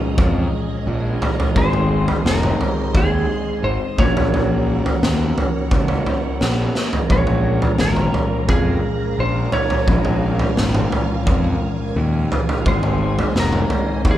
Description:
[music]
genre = psychedelic rock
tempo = 86 BPM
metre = 4/4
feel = straight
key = Bb minor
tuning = A4 = 439 Hz
[part]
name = phased string machine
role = sustained chords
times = 0.0-14.2 s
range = Db4 to Eb6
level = -31 LUFS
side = right 4 dB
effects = ensemble chorus, phaser
[part]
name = mellow electric guitar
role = riff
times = 0.0-14.2 s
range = Ab2 to Bb4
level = -24 LUFS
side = left 4 dB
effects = none
[part]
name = fuzz picked electric bass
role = bass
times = 0.2-14.2 s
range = F1 to F2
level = -21 LUFS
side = equal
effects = overdrive
[part]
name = raw garage drum kit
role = drums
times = 0.2-14.2 s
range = kick drum, snare drum, toms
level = -19 LUFS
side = right 1 dB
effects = none
[part]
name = clean lap steel guitar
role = melody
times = 1.6-14.2 s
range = Ab4 to Db5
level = -24 LUFS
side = right 1 dB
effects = none
[sound]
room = light reverb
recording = band playing live in one room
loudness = -16 LUFS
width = side -12 dB against mid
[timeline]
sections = 0.0-14.2 A section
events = drum fill 6.8-7.1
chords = 0.0 Bbm7; 1.6 Ab; 4.0 Gb/Bb; 7.1 Bbm7; 12.7 Ab

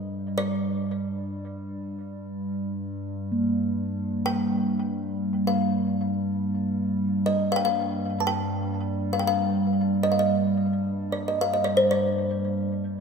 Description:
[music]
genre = world meditative, free-time meditation music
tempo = free time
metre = none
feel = none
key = G minor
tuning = A4 = 439 Hz
[part]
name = kalimba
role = melody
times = 0.0-13.0 s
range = C5 to A5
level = -26 LUFS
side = left 1 dB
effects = analog delay
[part]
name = warbly tape-like pad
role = drone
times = 0.0-13.0 s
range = G2 to G3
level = -26 LUFS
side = right 1 dB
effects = chorus, built-in reverb
[part]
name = bronze singing bowl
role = texture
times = 3.3-11.8 s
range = Bb3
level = -32 LUFS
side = right 2 dB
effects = none
[sound]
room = wet plate reverb, RT60 2.5 s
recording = dreamy mix soaked in reverb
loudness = -23 LUFS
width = side -6 dB against mid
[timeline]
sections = 0.0-13.0 A section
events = none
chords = none

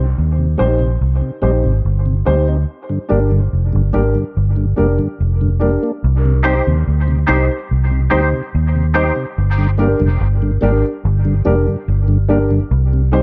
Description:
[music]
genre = reggae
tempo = 72 BPM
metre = 4/4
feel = straight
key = C minor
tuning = A4 = 440 Hz
[part]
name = mellow tonewheel organ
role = accompaniment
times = 0.0-13.2 s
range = G2 to Eb4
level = -23 LUFS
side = equal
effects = chorus vibrato, slow rotary speaker, low-pass filter
[part]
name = vintage muted fingered electric bass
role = bass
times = 0.0-13.2 s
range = F1 to Eb2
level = -17 LUFS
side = equal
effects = none
[part]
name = dark upright piano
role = stabs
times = 0.6-13.2 s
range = D4 to C5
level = -23 LUFS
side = equal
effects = low-pass filter, dub echo
[part]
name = twangy electric guitar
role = accompaniment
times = 6.4-9.1 s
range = Eb4 to C5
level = -25 LUFS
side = equal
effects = ensemble chorus, low-pass filter, dub echo
[sound]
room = digital ambience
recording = dark, warm production, nothing above 7.4 kHz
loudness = -16 LUFS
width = mono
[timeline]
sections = 0.0-6.0 A section; 6.0-13.2 B section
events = break 0.0-6.0; filter sweep 0.0-6.0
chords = 0.0 Cm; 2.7 Gm; 6.0 Cm; 9.4 Gm; 12.7 Cm

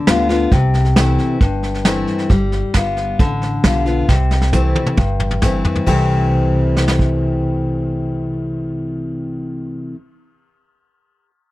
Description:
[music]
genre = honky-tonk and classic country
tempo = 134 BPM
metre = 4/4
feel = straight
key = C major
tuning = A4 = 436 Hz
[part]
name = picked steel-string acoustic guitar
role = accompaniment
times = 0.0-10.0 s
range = G2 to F4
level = -18 LUFS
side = left 2 dB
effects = none
[part]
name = upright bass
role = bass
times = 0.1-9.9 s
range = G1 to D2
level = -19 LUFS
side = equal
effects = none
[part]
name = vintage brush drum kit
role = drums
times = 0.1-7.1 s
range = hi-hat, kick drum, ride cymbal, snare drum, toms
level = -17 LUFS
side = right 1 dB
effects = none
[sound]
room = studio ambience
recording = dry, close 1970s-style studio recording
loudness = -14 LUFS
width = side -17 dB against mid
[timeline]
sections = 0.0-2.3 A section; 2.3-5.9 B section; 5.9-9.5 C section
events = drum fill 4.1-5.9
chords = 0.0 G7; 0.5 C6; 2.3 G7; 4.1 C6

